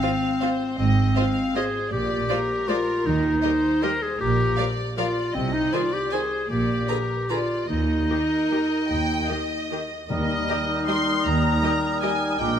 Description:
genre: classical, orchestral ballroom waltz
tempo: 143-170 BPM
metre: 3/4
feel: rubato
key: Eb major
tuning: A4 = 440 Hz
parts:
  - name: warm studio violin section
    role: melody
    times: 0.0-12.6 s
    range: Bb4 to C6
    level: -30 LUFS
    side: left 3 dB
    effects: none
  - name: clear clarinet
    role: second line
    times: 0.0-12.6 s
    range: C4 to Bb4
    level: -25 LUFS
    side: left 1 dB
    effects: none
  - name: warm studio violin section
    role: second line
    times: 0.0-12.1 s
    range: Bb4 to Bb5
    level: -32 LUFS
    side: left 1 dB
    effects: none
  - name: rich studio viola section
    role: accompaniment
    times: 0.0-12.1 s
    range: D3 to Bb4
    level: -33 LUFS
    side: equal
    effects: none
  - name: warm studio cello section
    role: bass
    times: 0.8-12.6 s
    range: Eb2 to Eb3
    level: -31 LUFS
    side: right 1 dB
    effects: none
  - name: warm symphonic double bass section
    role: bass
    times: 0.8-12.6 s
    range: Ab1 to Eb2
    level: -28 LUFS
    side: right 3 dB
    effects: none
  - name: mellow hollow flute section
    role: second line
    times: 10.1-12.6 s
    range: D6 to Eb6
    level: -31 LUFS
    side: equal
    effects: none
  - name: warm oboe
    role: second line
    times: 10.1-12.6 s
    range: Bb4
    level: -31 LUFS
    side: right 2 dB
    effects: none
  - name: warm bassoon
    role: accompaniment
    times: 10.1-12.6 s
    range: G3 to Ab3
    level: -32 LUFS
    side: right 1 dB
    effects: none
  - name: mellow French horn section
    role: sustained chords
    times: 10.1-12.6 s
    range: G3 to Eb4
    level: -32 LUFS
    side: left 2 dB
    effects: none
  - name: timpani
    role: percussion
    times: 10.1-10.6 s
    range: Eb3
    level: -35 LUFS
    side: left 3 dB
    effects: none
room: wet recital hall reverb, RT60 1.8 s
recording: none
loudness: -21 LUFS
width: side -9 dB against mid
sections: 0.0-10.1 A section; 10.1-12.6 B section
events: none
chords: 0.0 F5; 0.8 Fm7/Ab; 1.9 Bb7; 3.1 Eb; 4.2 Bb; 5.3 Ab/C; 6.5 Bb7; 7.7 Eb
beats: 0.02 0.41 | 0.78 1.16 1.55 | 1.92 2.29 2.68 | 3.06 3.43 3.83 | 4.20 4.58 4.97 | 5.35 5.73 6.12 | 6.50 6.89 7.30 | 7.69 8.09 8.51 | 8.90 9.30 9.71 | 10.10 10.49 10.88 | 11.26 11.63 12.02 | 12.39

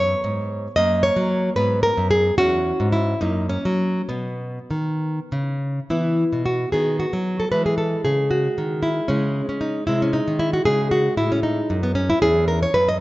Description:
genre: classical, baroque-style dance for nylon-string guitar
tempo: 65-78 BPM (dotted quarters)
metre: 6/8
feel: rubato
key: B major, E major from 5.9 s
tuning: A4 = 441 Hz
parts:
  - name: nylon-string guitar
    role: solo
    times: 0.0-13.0 s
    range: E2 to D#5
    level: -18 LUFS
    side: equal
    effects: none
room: moderate recital hall reverb, RT60 1.9 s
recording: nothing above 7.7 kHz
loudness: -19 LUFS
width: side -18 dB against mid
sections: 0.0-5.9 A section; 5.9-13.0 A section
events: none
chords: 0.0 C#7(no3); 0.8 F#; 1.6 G#m; 2.4 C#m/E; 3.2 F#; 4.1 B; 5.9 E5; 6.7 B/D#; 7.5 E; 9.1 C#5; 9.9 G#/B#; 10.7 C#5; 12.2 C#m/E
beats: | 0.78 1.58 | 2.39 3.21 | 4.10 5.01 | 5.90 6.72 | 7.52 8.32 | 9.10 9.88 | 10.67 11.44 | 12.22

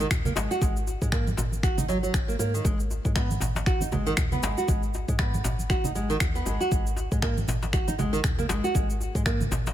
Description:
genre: afro house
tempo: 118 BPM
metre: 4/4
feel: swing 58% on 16ths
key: G# minor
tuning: A4 = 439 Hz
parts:
  - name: nylon-string guitar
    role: arpeggios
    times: 0.0-9.4 s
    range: D#3 to F#4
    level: -30 LUFS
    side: right 2 dB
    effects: sidechain pumping, ping-pong delay
  - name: woody FM bass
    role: bass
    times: 0.0-9.7 s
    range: G#1 to G#2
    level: -31 LUFS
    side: equal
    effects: sidechain pumping
  - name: afro-pop drum kit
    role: drums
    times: 0.0-9.7 s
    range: cabasa, finger snaps, toms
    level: -32 LUFS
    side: right 1 dB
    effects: overdrive
  - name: electronic kick drum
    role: drums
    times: 0.1-9.4 s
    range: none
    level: -26 LUFS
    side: equal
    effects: overdrive
  - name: djembe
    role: percussion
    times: 0.1-9.7 s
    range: none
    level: -37 LUFS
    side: left 4 dB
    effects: none
  - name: congas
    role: percussion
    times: 0.3-9.7 s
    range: none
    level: -33 LUFS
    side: right 4 dB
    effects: none
room: little or no reverb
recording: none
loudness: -24 LUFS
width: side -12 dB against mid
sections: 0.0-9.7 A section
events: none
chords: 0.0 D#m/G#; 2.6 G#5; 6.7 N.C.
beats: 0.11 | 0.61 1.12 1.63 2.14 | 2.65 3.16 3.67 4.17 | 4.68 5.19 5.70 6.21 | 6.72 7.23 7.73 8.24 | 8.75 9.26

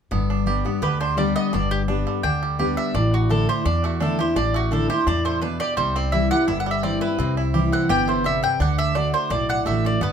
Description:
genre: bluegrass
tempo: 170 BPM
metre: 4/4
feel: straight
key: G major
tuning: A4 = 443 Hz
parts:
  - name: picked steel-string acoustic guitar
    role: accompaniment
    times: 0.1-10.1 s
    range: E2 to G4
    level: -23 LUFS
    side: left 1 dB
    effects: none
  - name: bluegrass banjo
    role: arpeggios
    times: 0.1-10.1 s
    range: D3 to G4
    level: -28 LUFS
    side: right 7 dB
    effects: none
  - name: upright bass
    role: bass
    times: 0.1-10.1 s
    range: G1 to E2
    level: -24 LUFS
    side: equal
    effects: none
  - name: mandolin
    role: melody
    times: 0.8-10.1 s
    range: F#4 to G5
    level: -24 LUFS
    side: equal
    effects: none
room: moderate studio reverb, RT60 0.5 s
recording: none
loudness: -19 LUFS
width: side -7 dB against mid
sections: 0.1-10.1 A section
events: none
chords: 0.1 G; 2.9 Asus4; 5.8 C; 8.6 D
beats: | 0.12 0.47 0.82 1.18 | 1.53 1.89 2.24 2.59 | 2.95 3.30 3.65 4.01 | 4.36 4.71 5.07 5.42 | 5.78 6.13 6.48 6.84 | 7.19 7.54 7.90 8.25 | 8.60 8.96 9.31 9.66 | 10.01

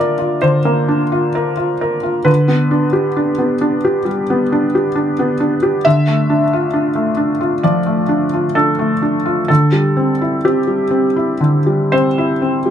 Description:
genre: neoclassical minimalist piano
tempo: 58-69 BPM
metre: 4/4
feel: rubato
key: D minor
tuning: A4 = 441 Hz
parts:
  - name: felt-muted upright piano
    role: solo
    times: 0.0-12.7 s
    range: D3 to E5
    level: -13 LUFS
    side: equal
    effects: none
room: light reverb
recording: close, detailed microphones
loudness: -13 LUFS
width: side -9 dB against mid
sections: 0.0-12.7 A section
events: none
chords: 0.0 Bb/D; 2.3 G/D; 5.9 Dm; 9.5 C/D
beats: 0.45 1.37 | 2.28 3.19 4.08 4.97 | 5.85 6.73 7.63 8.55 | 9.49 10.45 11.43 12.43

